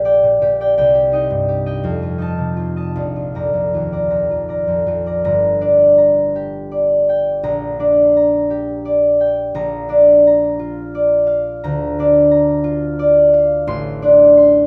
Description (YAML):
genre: classical, solo harp piece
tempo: 51-59 BPM (dotted quarters)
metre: 6/8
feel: rubato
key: Bb major, G minor from 5.3 s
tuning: A4 = 440 Hz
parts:
  - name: concert harp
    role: solo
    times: 0.0-14.7 s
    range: G1 to C6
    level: -15 LUFS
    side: equal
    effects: none
room: moderate studio reverb, RT60 0.8 s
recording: none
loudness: -15 LUFS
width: mono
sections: 0.0-5.3 A section; 5.3-14.7 B section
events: none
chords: 0.0 Gm/Bb; 0.8 Cm; 1.8 F7; 3.0 Bb; 5.3 Gm; 7.5 Gm/Bb; 9.6 Bb; 11.6 Bb/D; 13.7 D7(no3)/A